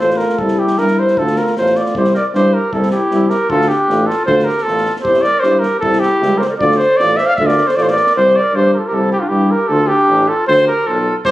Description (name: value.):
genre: balkan folk, Balkan brass band.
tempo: 155 BPM.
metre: 2/4.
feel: straight.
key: unclear.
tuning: A4 = 440 Hz.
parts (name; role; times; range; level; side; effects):
mellow trumpet; melody; 0.0-11.3 s; F4 to F5; -14 LUFS; equal; plate reverb.
clear trombone; accompaniment; 0.0-7.9 s; E4 to F4; -23 LUFS; left 4 dB; none.
dark euphonium; accompaniment; 0.0-7.9 s; G3 to A3; -22 LUFS; right 2 dB; none.
clear tuba; bass; 0.0-11.3 s; A1 to G2; -18 LUFS; equal; none.
compact cocktail drum kit; percussion; 0.0-8.1, 11.2-11.3 s; kick drum, snare drum; -31 LUFS; equal; none.
mellow clarinet; second line; 1.9-11.3 s; D4 to D5; -22 LUFS; right 1 dB; none.
room: moderate studio reverb, RT60 0.6 s.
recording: recorded on a phone in the room, studio ambience, compression.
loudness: -11 LUFS.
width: side -16 dB against mid.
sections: 0.0-2.0 A section; 2.0-8.2 B section; 8.2-11.3 B section.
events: none.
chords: 0.4 C; 1.2 Dm; 2.0 C; 3.5 Dm; 5.1 C; 6.6 Dm; 8.2 C5; 9.7 D5.